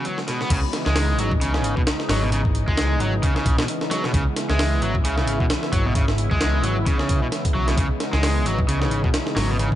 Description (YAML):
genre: breakbeat, breaks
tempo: 132 BPM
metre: 4/4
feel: swing 57% on 16ths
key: C# minor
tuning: A4 = 442 Hz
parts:
  - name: lush unison pad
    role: sustained chords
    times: 0.0-9.8 s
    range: C#3 to F#4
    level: -27 LUFS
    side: equal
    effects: chorus, sidechain pumping
  - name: crunchy overdriven guitar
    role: riff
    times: 0.0-9.7 s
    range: B2 to B3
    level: -25 LUFS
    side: equal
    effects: ping-pong delay
  - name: breakbeat sampler-style drum kit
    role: drums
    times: 0.1-9.8 s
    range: crash cymbal, hi-hat, kick drum, snare drum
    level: -23 LUFS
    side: equal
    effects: high-pass filter on hats, high-pass filter on snare, high-pass filter on cymbals, high-pass filter on kick, high-pass filter on room
  - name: picked electric bass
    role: bass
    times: 0.5-9.8 s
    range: G#1 to C#2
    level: -23 LUFS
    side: equal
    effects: none
room: little or no reverb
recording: nothing above 10.9 kHz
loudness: -19 LUFS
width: side -13 dB against mid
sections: 0.5-9.8 A section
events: drop 0.5-9.8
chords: 0.0 C#m7; 0.5 C#m9